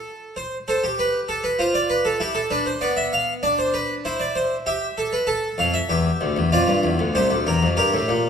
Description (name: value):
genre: classical, baroque-style 4-part fugue for harpsichord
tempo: 97 BPM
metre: 4/4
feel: straight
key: unclear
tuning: A4 = 440 Hz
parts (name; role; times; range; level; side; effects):
- harpsichord; solo; 0.0-8.3 s; C2 to A5; -19 LUFS; equal; none
room: wet recital hall reverb, RT60 1.5 s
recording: minimal, uncompressed stereo recording, lossy compression artefacts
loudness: -19 LUFS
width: side -7 dB against mid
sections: 0.0-8.3 A section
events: none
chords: 0.4 C5; 1.6 Dm7/F; 2.8 Bdim; 4.1 C/E; 5.3 F; 6.5 Gm7; 7.8 Edim/G (rootless)